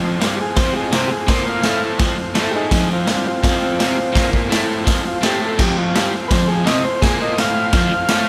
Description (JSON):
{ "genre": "garage rock duo or trio", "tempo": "167 BPM", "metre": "4/4", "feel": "straight", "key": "F major", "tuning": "A4 = 440 Hz", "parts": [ { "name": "combo organ", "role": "sustained chords", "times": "0.0-8.3 s", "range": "A4 to A5", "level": "-31 LUFS", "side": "equal", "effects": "none" }, { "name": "crunchy overdriven guitar", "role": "riff", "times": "0.0-8.3 s", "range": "F2 to C4", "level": "-23 LUFS", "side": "equal", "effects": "none" }, { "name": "raw garage drum kit", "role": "drums", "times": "0.2-8.2 s", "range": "crash cymbal, hi-hat, kick drum, snare drum", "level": "-21 LUFS", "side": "equal", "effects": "none" }, { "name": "combo organ", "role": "melody", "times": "0.4-8.3 s", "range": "C4 to F5", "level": "-24 LUFS", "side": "equal", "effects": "none" } ], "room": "light reverb", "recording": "none", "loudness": "-18 LUFS", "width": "mono", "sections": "0.0-8.3 A section", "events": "transistor combo organ solo 0.0-8.3; transistor combo organ fill 7.7-8.3", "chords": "0.0 F" }